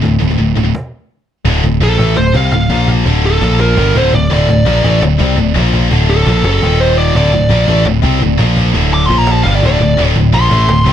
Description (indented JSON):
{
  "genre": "heavy metal",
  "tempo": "169 BPM",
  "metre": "4/4",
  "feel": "straight",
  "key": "unclear",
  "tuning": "A4 = 441 Hz",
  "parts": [
    { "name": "scooped high-gain guitar", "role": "riff", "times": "0.0-10.9 s", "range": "D2 to C4", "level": "-18 LUFS", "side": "right 12 dB", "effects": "distortion" },
    { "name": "tight distorted guitar", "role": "riff", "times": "0.0-10.9 s", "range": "D2 to C4", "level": "-17 LUFS", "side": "left 14 dB", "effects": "distortion" },
    { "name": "picked electric bass", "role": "bass", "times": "0.0-10.9 s", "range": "D1 to C2", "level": "-13 LUFS", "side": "equal", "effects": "none" },
    { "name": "cajon", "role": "drums", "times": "0.0-10.9 s", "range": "none", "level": "-20 LUFS", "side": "right 1 dB", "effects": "none" },
    { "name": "high-gain lead guitar", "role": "melody", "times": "1.8-10.9 s", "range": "A4 to D6", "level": "-16 LUFS", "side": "right 1 dB", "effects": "distortion, tape echo" }
  ],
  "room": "little or no reverb",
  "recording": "dark, warm production",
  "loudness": "-9 LUFS",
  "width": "side -10 dB against mid",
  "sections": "0.0-1.5 A section; 1.5-10.9 B section",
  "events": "stop 0.7-1.5; lead electric guitar solo 1.5-10.9",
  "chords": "0.0 D5; 1.1 N.C.; 1.5 D5; 2.7 Bb5; 3.1 D5; 3.4 Bb5; 3.8 D5; 5.5 Bb5; 5.9 D; 6.6 Eb5; 7.1 D5; 8.4 Bb5; 8.7 D5; 9.1 Bb5; 9.5 D5",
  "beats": "| 0.03 0.39 0.74 1.10 | 1.46 1.81 2.17 2.53 | 2.88 3.24 3.59 3.95 | 4.31 4.66 5.02 5.37 | 5.73 6.08 6.44 6.79 | 7.15 7.50 7.86 8.21 | 8.57 8.92 9.28 9.63 | 9.99 10.34 10.70"
}